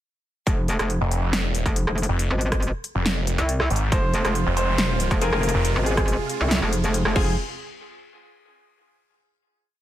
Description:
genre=heavy wobble dubstep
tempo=139 BPM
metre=4/4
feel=half-time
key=F minor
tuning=A4 = 441 Hz
part: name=metallic wobble bass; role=bass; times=0.5-7.4 s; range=F1 to C2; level=-22 LUFS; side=equal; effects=chorus, overdrive
part: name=big-room dance drum kit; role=drums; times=0.5-7.2 s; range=crash cymbal, hi-hat, rim click, snare drum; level=-27 LUFS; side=equal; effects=overdrive, studio reverb
part: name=electronic kick drum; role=drums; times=0.5-7.2 s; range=none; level=-24 LUFS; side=equal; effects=overdrive, studio reverb
part: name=snarling distorted saw bass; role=bass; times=1.0-5.7 s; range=F1 to Ab1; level=-23 LUFS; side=equal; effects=distortion, overdrive
part: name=clear baby grand piano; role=melody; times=3.9-7.3 s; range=Ab4 to C5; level=-28 LUFS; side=right 1 dB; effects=vintage 12-bit sampler grit, tape echo
part: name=supersaw chords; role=sustained chords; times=3.9-7.4 s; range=C3 to F4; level=-31 LUFS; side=equal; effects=phaser, sidechain pumping
part: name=orchestra-hit-like synth stab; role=stabs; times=5.2-7.3 s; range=C4 to Ab4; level=-32 LUFS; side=left 3 dB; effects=built-in reverb, tape echo
room=digital ambience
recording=none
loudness=-20 LUFS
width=side -13 dB against mid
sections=0.5-7.4 drop; 7.4-9.1 final hit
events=drop 0.5-7.4; band accent 7.0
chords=0.5 Fm; 7.4 N.C.

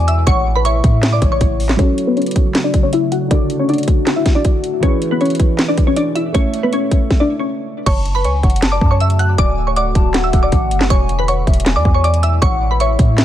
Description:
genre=hip hop, trap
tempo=158 BPM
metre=4/4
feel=half-time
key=F# minor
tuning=A4 = 441 Hz
part: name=glassy wavetable pluck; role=melody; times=0.0-13.2 s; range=B3 to F#6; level=-18 LUFS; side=left 1 dB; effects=chorus, low-pass filter, tape echo
part: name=hollow clarinet-like synth lead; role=second line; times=0.0-1.8, 7.9-13.2 s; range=C#5 to A5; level=-24 LUFS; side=left 4 dB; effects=chorus, tape echo
part: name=deep dark ambient pad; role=sustained chords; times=0.0-13.2 s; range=B2 to F#4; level=-25 LUFS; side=left 3 dB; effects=chorus, built-in reverb, low-pass filter
part: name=warm 808-style bass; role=bass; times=0.0-1.8, 7.9-13.2 s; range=D1 to A2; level=-16 LUFS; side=equal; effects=none
part: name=trap drum kit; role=drums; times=0.1-13.2 s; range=crash cymbal, handclaps, hi-hat, kick drum, snare drum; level=-15 LUFS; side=equal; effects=vintage 12-bit sampler grit
part: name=felt-muted upright piano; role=accompaniment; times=1.8-7.8 s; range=D3 to E5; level=-23 LUFS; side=right 5 dB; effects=low-pass filter
room=little or no reverb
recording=none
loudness=-12 LUFS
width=side -12 dB against mid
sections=0.0-1.8 A section; 1.8-7.9 B section; 7.9-13.2 A section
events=filter sweep 1.8-7.9; stop 7.1-7.9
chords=0.3 A; 1.8 F#m; 3.3 D; 4.8 E; 6.3 A; 7.9 F#m; 9.4 D; 10.9 E; 12.4 A

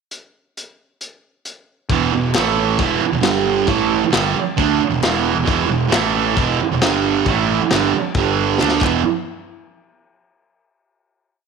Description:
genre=garage rock duo or trio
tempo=134 BPM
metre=4/4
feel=straight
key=unclear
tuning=A4 = 440 Hz
part: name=crunchy breakbeat drum kit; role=drums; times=0.1-8.9 s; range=crash cymbal, hi-hat, kick drum, snare drum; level=-22 LUFS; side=left 3 dB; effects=none
part: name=thick fuzz guitar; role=riff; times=1.9-9.0 s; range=E2 to D4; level=-16 LUFS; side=right 9 dB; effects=distortion
part: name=fuzz picked electric bass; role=bass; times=1.9-9.0 s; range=E1 to D2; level=-25 LUFS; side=left 3 dB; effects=overdrive
part: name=group handclap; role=percussion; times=2.3-9.0 s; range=none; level=-30 LUFS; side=left 13 dB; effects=none
room=moderate echo chamber reverb, RT60 1.3 s, studio ambience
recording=1960s-style stereo with parts hard left and right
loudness=-15 LUFS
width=side -5 dB against mid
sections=0.1-1.9 pickup bar; 1.9-9.0 riff; 9.0-10.8 final hit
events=drum fill 8.6-9.0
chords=0.1 N.C.; 1.9 E5; 2.4 A5; 2.8 E5; 3.2 G5; 3.7 E5; 5.9 A5; 6.4 E5; 6.8 G5; 7.3 Emadd11; 8.2 G5; 8.6 D5; 8.8 E5; 9.0 N.C.

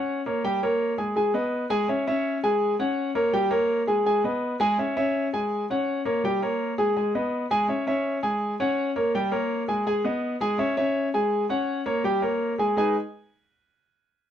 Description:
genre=latin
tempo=165 BPM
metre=4/4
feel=straight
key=G# minor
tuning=A4 = 439 Hz
part: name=warm concert grand piano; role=solo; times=0.0-12.9 s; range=G3 to G#5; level=-23 LUFS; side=equal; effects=none
room=light reverb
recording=none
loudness=-23 LUFS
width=side -10 dB against mid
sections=0.0-1.2 A section; 1.2-12.8 A section; 12.8-14.2 B section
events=none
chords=0.4 Gdim; 1.2 G#m; 1.9 C#m; 2.6 F#sus2; 3.3 Gdim; 4.1 G#m; 4.8 C#m; 5.5 F#sus2; 6.2 Gdim; 7.0 G#m; 7.7 C#m; 8.4 F#sus2; 9.1 Gdim; 9.9 G#m; 10.6 C#m; 11.3 F#sus2; 12.0 Gdim; 12.8 G#m

